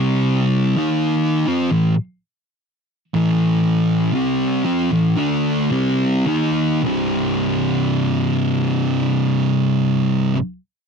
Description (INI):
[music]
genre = metal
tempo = 52-66 BPM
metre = 4/4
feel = straight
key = C dorian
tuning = A4 = 440 Hz
[part]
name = thick fuzz guitar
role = riff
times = 0.0-10.4 s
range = C2 to Eb4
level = -16 LUFS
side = equal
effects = distortion
[sound]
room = little or no reverb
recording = dry, close 1970s-style studio recording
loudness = -16 LUFS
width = side -6 dB against mid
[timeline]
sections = 0.0-6.8 A section; 6.8-10.9 B section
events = slowing down 0.0-6.8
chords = 0.0 C5; 0.8 A5; 6.8 C5